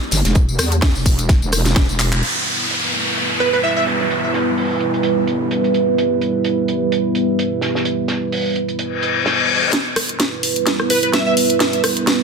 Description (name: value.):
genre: bass house.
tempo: 128 BPM.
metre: 4/4.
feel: swing 55% on 16ths.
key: E minor.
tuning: A4 = 440 Hz.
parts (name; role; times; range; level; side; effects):
dark analog pad; sustained chords; 0.1-12.2 s; G3 to B4; -19 LUFS; right 3 dB; chorus, phaser, sidechain pumping.
wobble bass; bass; 0.1-2.2 s; E1 to E2; -18 LUFS; equal; chorus, tube saturation, sidechain pumping.
garage drum kit; drums; 0.1-2.3, 9.7-12.2 s; crash cymbal, handclaps, hi-hat, rim click, snare drum, tambourine; -19 LUFS; equal; none.
warm soul drum kit; drums; 0.1-9.6 s; hi-hat, snare drum; -27 LUFS; right 2 dB; sidechain pumping on hats, high-pass filter on hats, low-pass filter on hats, soft clipping on snare, high-pass filter on snare, low-pass filter on snare, high-pass filter on room, low-pass filter on room.
electronic kick drum; drums; 0.4-1.9 s; none; -15 LUFS; equal; none.
downlifter and reverse cymbal; sound effects; 2.2-9.7 s; none; -20 LUFS; left 2 dB; none.
plucky unison lead; melody; 3.4-3.8, 10.9-11.3 s; B4 to E5; -20 LUFS; right 2 dB; ensemble chorus, digital delay.
room: moderate plate reverb, RT60 2.1 s.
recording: dense, heavily limited modern master.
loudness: -15 LUFS.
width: side -5 dB against mid.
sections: 0.0-2.2 A section; 2.2-9.7 B section; 9.7-12.2 C section.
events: drum fill 2.0, 9.7-12.2; band accent 2.1; reverse cymbal 8.9-9.7; build-up 9.7-12.2.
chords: 0.0 Em.